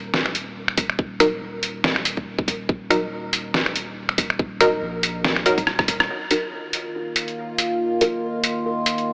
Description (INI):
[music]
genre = deep dubstep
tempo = 141 BPM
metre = 4/4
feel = swing 56% on 16ths, half-time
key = Eb minor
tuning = A4 = 440 Hz
[part]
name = saturated sub bass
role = bass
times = 0.0-6.1 s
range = Eb1 to Bb1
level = -38 LUFS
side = equal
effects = none
[part]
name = trip hop sampler-style drum kit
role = drums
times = 0.1-9.1 s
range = finger snaps, hi-hat, rim click, snare drum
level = -24 LUFS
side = equal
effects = overdrive
[part]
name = electronic kick drum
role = drums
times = 0.8-6.0 s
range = none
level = -26 LUFS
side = equal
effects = none
[part]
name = filtered dub chord stab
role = stabs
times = 1.2-8.1 s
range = Gb3 to Bb4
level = -26 LUFS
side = equal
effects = chorus, dub echo
[part]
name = overtone-sweeping drone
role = sustained chords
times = 6.5-9.1 s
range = Eb3 to F4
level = -27 LUFS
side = equal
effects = chorus, built-in reverb, phaser
[sound]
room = moderate huge ambient reverb, RT60 4.3 s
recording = AM radio sound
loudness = -23 LUFS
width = mono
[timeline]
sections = 0.0-6.1 A section; 6.1-9.1 B section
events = filter sweep on synth stab 0.0-6.1, 6.1-9.1; drum fill 5.7-6.1; band accent 6.0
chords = 0.0 Eb5